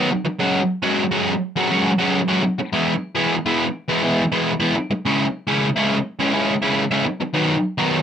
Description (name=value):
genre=rock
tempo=104 BPM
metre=4/4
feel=straight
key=C# minor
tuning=A4 = 441 Hz
part: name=fuzz guitar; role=solo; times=0.0-8.0 s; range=C#3 to F#4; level=-18 LUFS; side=equal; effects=distortion
room=light reverb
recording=rough home demo mix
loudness=-18 LUFS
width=side -8 dB against mid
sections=0.0-8.0 A section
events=none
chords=0.4 F#sus2; 2.7 E; 5.0 C#m; 7.1 B